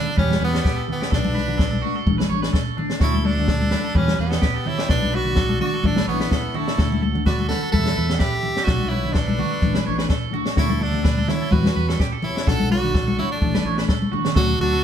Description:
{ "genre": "highlife guitar band", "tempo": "127 BPM", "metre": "4/4", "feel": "swing 54% on 16ths", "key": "unclear", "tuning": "A4 = 440 Hz", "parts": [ { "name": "edgy tenor saxophone", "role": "melody", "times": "0.0-14.8 s", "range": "B3 to A4", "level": "-26 LUFS", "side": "equal", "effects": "none" }, { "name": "growling trumpet", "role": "second line", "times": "0.0-14.8 s", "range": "D4 to F#5", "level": "-35 LUFS", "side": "equal", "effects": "none" }, { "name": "mellow electric guitar", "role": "accompaniment", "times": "0.0-14.8 s", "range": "E3 to G4", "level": "-30 LUFS", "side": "left 7 dB", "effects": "none" }, { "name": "electric guitar at the edge of break-up", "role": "arpeggios", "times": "0.0-14.8 s", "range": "D4 to C#5", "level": "-29 LUFS", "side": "right 7 dB", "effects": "none" }, { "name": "fingered electric bass", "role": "bass", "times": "0.2-14.8 s", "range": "A1 to E2", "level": "-25 LUFS", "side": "equal", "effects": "none" }, { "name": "compact cocktail drum kit", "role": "drums", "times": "0.2-14.5 s", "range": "kick drum, snare drum", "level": "-23 LUFS", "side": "equal", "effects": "none" }, { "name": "congas", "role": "percussion", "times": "0.2-14.4 s", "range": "none", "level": "-26 LUFS", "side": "left 1 dB", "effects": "none" } ], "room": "moderate stone room reverb, RT60 1.4 s", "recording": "band playing live in one room", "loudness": "-18 LUFS", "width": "side -9 dB against mid", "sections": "0.0-14.4 A section", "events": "drum fill 13.9-14.4", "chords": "0.2 Em; 1.1 Bm7; 2.1 Asus4; 3.0 Dadd9; 4.0 Em; 4.9 Bm7; 5.8 Asus4; 6.8 Dadd9; 7.7 Em; 8.7 Bm7; 9.6 Asus4; 10.6 Dadd9; 11.5 Em; 12.5 Bm7; 13.4 Asus4", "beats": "0.18 0.65 | 1.12 1.59 2.07 2.54 | 3.01 3.48 3.96 4.43 | 4.90 5.37 5.84 6.32 | 6.79 7.26 7.74 8.21 | 8.68 9.16 9.63 10.10 | 10.58 11.05 11.53 12.00 | 12.47 12.95 13.42 13.89 | 14.37" }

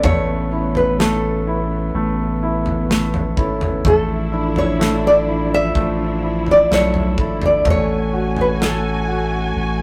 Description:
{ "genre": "pop ballad", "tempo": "63 BPM", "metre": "4/4", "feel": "straight", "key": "A major", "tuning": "A4 = 440 Hz", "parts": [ { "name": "nylon-string guitar", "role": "melody", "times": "0.0-9.8 s", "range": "A4 to E5", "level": "-20 LUFS", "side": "equal", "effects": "none" }, { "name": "clear baby grand piano", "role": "accompaniment", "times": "0.0-9.8 s", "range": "A3 to A4", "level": "-27 LUFS", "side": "equal", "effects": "none" }, { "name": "warm studio string section", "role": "sustained chords", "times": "0.0-9.8 s", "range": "C#3 to G#5", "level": "-28 LUFS", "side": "equal", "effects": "none" }, { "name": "fingerpicked plugged-in steel-string acoustic guitar", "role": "arpeggios", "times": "0.0-9.8 s", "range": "A2 to A4", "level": "-30 LUFS", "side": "equal", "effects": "none" }, { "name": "saturated sub bass", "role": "bass", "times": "0.0-9.8 s", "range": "G#1 to B1", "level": "-25 LUFS", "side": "equal", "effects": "none" }, { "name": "modern studio drum kit", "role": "drums", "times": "0.0-8.8 s", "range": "kick drum, snare drum, toms", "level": "-23 LUFS", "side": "equal", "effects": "none" } ], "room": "moderate studio reverb, RT60 0.6 s", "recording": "rough rehearsal-room recording, tube saturation", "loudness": "-18 LUFS", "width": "mono", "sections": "0.0-9.8 A section", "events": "none", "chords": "0.0 Aadd9; 3.8 Dmadd9/A; 7.7 F#madd9/A", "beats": "| 0.04 0.99 1.94 2.90 | 3.85 4.80 5.75 6.71 | 7.66 8.61 9.56" }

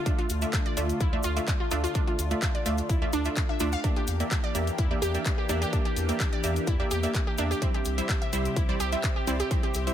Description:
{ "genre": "progressive house", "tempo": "127 BPM", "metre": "4/4", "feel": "straight", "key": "D minor", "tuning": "A4 = 440 Hz", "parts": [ { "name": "lush unison pad", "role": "sustained chords", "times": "0.0-9.9 s", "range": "C3 to E5", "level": "-35 LUFS", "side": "equal", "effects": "chorus, phaser, sidechain pumping" }, { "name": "glassy wavetable pluck", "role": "arpeggios", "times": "0.1-9.7 s", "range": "C4 to F5", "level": "-33 LUFS", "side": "equal", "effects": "chorus, sidechain pumping, ping-pong delay" }, { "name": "wide unison pluck", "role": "stabs", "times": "0.1-9.9 s", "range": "G3 to E5", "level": "-32 LUFS", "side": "right 1 dB", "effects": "sidechain pumping, ping-pong delay" }, { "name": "electronic kick drum", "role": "drums", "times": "0.1-9.6 s", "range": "none", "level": "-27 LUFS", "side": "equal", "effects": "none" }, { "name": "house drum kit", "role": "drums", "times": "0.1-9.9 s", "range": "handclaps, hi-hat", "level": "-36 LUFS", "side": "left 1 dB", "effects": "none" }, { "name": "cabasa", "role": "percussion", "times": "0.1-9.9 s", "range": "none", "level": "-41 LUFS", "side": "left 1 dB", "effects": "none" }, { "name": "saturated sub bass", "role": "bass", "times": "0.3-9.9 s", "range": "C2 to E2", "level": "-30 LUFS", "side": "equal", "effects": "sidechain pumping" } ], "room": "light reverb", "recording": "none", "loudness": "-25 LUFS", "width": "side -10 dB against mid", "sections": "0.0-9.9 A section", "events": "none", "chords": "0.0 Dmadd9; 3.8 Em7b5; 7.6 C", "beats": "| 0.06 0.53 1.00 1.48 | 1.95 2.42 2.90 3.37 | 3.84 4.31 4.79 5.26 | 5.73 6.20 6.67 7.15 | 7.62 8.09 8.56 9.04 | 9.51" }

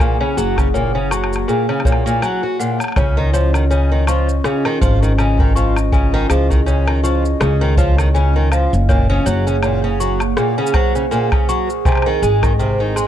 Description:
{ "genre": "folktronica", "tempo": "81 BPM", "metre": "4/4", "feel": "swing 56% on 16ths", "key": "Db major", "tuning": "A4 = 439 Hz", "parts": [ { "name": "worn celesta", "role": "second line", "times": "0.0-13.1 s", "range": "Ab4 to Db6", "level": "-23 LUFS", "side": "left 4 dB", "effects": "vintage 12-bit sampler grit, ping-pong delay" }, { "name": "warbly tape-like pad", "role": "sustained chords", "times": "0.0-13.1 s", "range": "Bb3 to Gb5", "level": "-23 LUFS", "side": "right 2 dB", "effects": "chorus, built-in reverb" }, { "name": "fingerpicked twelve-string acoustic guitar", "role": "arpeggios", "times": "0.0-13.1 s", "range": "Bb2 to Gb4", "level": "-20 LUFS", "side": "equal", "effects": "vintage 12-bit sampler grit, low-pass filter, digital delay" }, { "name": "electronic woodblock, shaker and rim click", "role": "drums", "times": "0.0-13.1 s", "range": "none", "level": "-25 LUFS", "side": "left 2 dB", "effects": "overdrive" }, { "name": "kick drum", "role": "drums", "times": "0.0-12.6 s", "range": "none", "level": "-17 LUFS", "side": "equal", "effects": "none" }, { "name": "upright bass", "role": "bass", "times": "0.4-13.1 s", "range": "Gb1 to Db2", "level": "-16 LUFS", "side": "equal", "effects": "none" } ], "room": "light reverb", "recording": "dark, warm production", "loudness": "-14 LUFS", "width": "side -10 dB against mid", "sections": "0.0-13.1 A section", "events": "none", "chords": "0.0 Gbadd9; 3.0 Dbadd9; 8.9 Gbadd9; 11.9 Ab", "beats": "| 0.00 0.74 1.48 2.22 | 2.96 3.70 4.44 5.18 | 5.93 6.67 7.41 8.15 | 8.89 9.63 10.37 11.11 | 11.85 12.59" }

